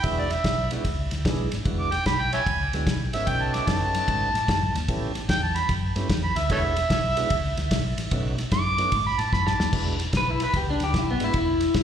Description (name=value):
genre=electric blues shuffle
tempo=149 BPM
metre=4/4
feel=swing 66% on 8ths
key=E mixolydian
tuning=A4 = 440 Hz
part: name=overdriven harmonica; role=second line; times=0.0-9.7 s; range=A4 to D6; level=-26 LUFS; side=right 2 dB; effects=slapback echo, digital delay
part: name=tonewheel organ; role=accompaniment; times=0.0-11.3 s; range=G#3 to G#4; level=-34 LUFS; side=right 3 dB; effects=slow rotary speaker, overdrive, slapback echo
part: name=vintage muted fingered electric bass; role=bass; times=0.0-11.8 s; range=E1 to A2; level=-28 LUFS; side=equal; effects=none
part: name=warm soul drum kit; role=drums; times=0.0-11.8 s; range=crash cymbal, kick drum, ride cymbal, snare drum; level=-27 LUFS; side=left 1 dB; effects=none
part: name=electric guitar through a small old amp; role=melody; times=10.2-11.8 s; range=B3 to B4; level=-23 LUFS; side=left 2 dB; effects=spring reverb, slapback echo
room=moderate plate reverb, RT60 1.5 s, studio ambience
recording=live gig heard through the venue's PA, club reverb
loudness=-22 LUFS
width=side -9 dB against mid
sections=0.0-9.7 A section; 9.7-11.8 A section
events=harmonica solo 0.0-9.7; drum fill 9.3-9.7; clean electric guitar solo 9.7-11.8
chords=0.0 E9; 3.3 B9; 4.9 A9; 6.5 E9; 8.1 B9; 9.7 E9